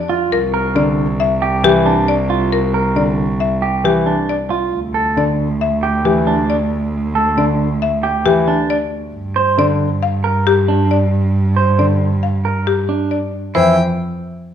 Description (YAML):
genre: classical, minimalist pattern music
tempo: 136 BPM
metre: 5/4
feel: straight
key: unclear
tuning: A4 = 440 Hz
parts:
  - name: buzzing marimba with hard mallets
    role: melody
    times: 0.0-13.8 s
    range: G4 to F5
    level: -19 LUFS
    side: left 8 dB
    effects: none
  - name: rich cello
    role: bass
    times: 0.0-13.8 s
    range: C2 to G2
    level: -18 LUFS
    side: right 2 dB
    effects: none
  - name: clean electric guitar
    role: arpeggios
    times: 0.1-13.8 s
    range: D4 to C5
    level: -19 LUFS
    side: right 4 dB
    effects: none
  - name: warm grand piano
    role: accompaniment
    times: 0.8-13.8 s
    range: D3 to E3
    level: -19 LUFS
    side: equal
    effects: none
  - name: clear violin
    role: arpeggios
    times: 13.6-13.8 s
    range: G5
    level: -25 LUFS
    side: left 4 dB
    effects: none
room: moderate large studio reverb, RT60 1.3 s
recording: dark, warm production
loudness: -14 LUFS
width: side -9 dB against mid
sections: 0.0-13.6 A section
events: none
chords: 0.3 C7sus2; 4.7 Dsus24; 9.1 Gm; 13.6 Fsus2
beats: | 0.32 0.76 1.20 1.64 2.08 | 2.52 2.96 3.40 3.85 4.29 | 4.73 5.17 5.61 6.05 6.49 | 6.93 7.37 7.82 8.26 8.70 | 9.14 9.58 10.02 10.46 10.90 | 11.35 11.79 12.23 12.67 13.11 | 13.55